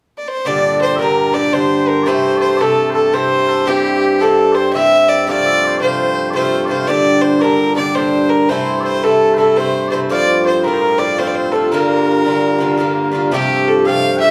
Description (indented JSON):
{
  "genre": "celtic folk, Celtic waltz",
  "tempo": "112 BPM",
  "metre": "3/4",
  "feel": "swing 64% on 8ths",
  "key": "G dorian",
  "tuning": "A4 = 439 Hz",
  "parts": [
    { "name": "clear fiddle", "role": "melody", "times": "0.2-14.3 s", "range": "G4 to F5", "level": "-18 LUFS", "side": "equal", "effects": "plate reverb" },
    { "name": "mellow small bagpipes", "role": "second line", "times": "0.5-14.3 s", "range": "G4 to G5", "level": "-24 LUFS", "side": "equal", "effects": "slapback echo" },
    { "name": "Irish bouzouki", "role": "accompaniment", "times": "0.5-14.3 s", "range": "G2 to G4", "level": "-19 LUFS", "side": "equal", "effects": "none" },
    { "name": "pedal harmonium", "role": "drone", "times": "0.5-14.3 s", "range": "G2 to G3", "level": "-25 LUFS", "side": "equal", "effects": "none" }
  ],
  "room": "wet small room reverb, RT60 0.6 s",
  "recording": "heard from further back in the room",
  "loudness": "-15 LUFS",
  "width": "mono",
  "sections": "0.5-13.3 A section",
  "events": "none",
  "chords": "0.5 Gm; 2.1 Am7; 3.7 C/G; 5.3 F; 6.9 Gm; 8.5 Am; 10.1 F; 11.7 Gm7; 13.3 Fadd9"
}